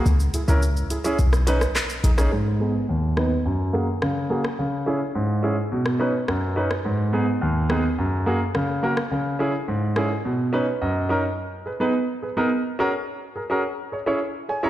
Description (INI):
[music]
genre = dancehall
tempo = 106 BPM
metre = 4/4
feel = straight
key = G# minor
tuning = A4 = 444 Hz
[part]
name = warm concert grand piano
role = accompaniment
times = 0.0-14.7 s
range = D#2 to A#5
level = -22 LUFS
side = right 1 dB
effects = low-pass filter
[part]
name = warm 808-style bass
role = bass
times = 0.1-2.3 s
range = A#1 to C#2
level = -19 LUFS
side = equal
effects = none
[part]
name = afro-pop drum kit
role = drums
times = 0.1-10.1 s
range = handclaps, hi-hat, rim click, shaker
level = -30 LUFS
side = equal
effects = none
[sound]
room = light reverb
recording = played on a big sound system in a bare room, large studio reverb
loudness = -20 LUFS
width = side -13 dB against mid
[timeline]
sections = 0.0-2.3 A section; 2.3-11.4 B section; 11.4-14.7 A section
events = break 0.1-2.3; filter sweep on grand piano 2.3-11.4; drums muted 10.2-11.4; grand piano fill 10.5-11.4, 14.2-14.7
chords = 0.1 C#m; 1.2 Badd9; 2.3 G#m; 3.5 F#add9; 4.6 C#m; 5.7 Badd9; 6.8 G#m; 8.0 F#; 9.1 C#m; 10.2 Badd9; 11.4 G#m; 12.5 F#add9; 13.6 C#m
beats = | 0.06 0.62 1.19 1.76 | 2.32 2.89 3.45 4.02 | 4.59 5.15 5.72 6.28 | 6.85 7.42 7.98 8.55 | 9.11 9.68 10.25 10.81 | 11.38 11.94 12.51 13.08 | 13.64 14.21